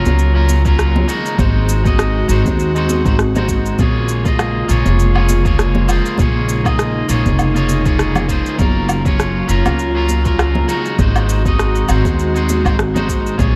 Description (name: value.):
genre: sunset chillout.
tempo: 100 BPM.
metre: 4/4.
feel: swing 55% on 16ths.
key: unclear.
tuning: A4 = 440 Hz.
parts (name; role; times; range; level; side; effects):
electric guitar at the edge of break-up; accompaniment; 0.0-13.6 s; Gb3 to Eb5; -23 LUFS; equal; vintage 12-bit sampler grit, tape echo.
airy breathy pad; sustained chords; 0.0-13.6 s; Db3 to F5; -23 LUFS; equal; chorus.
upright bass; bass; 0.1-13.6 s; F1 to Eb2; -19 LUFS; equal; none.
electronic cabasa, rim click and woodblock; drums; 0.1-13.5 s; none; -25 LUFS; equal; none.
congas; percussion; 0.1-13.5 s; none; -28 LUFS; equal; none.
electronic kick drum; drums; 0.7-13.5 s; none; -20 LUFS; equal; overdrive.
room: light reverb, digital ambience.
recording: dark, warm production.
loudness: -15 LUFS.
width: mono.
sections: 0.0-13.6 A section.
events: none.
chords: 0.0 Gbmaj7; 1.1 Ab7; 3.8 Bbm7; 8.6 Gbmaj7; 10.7 Ab7.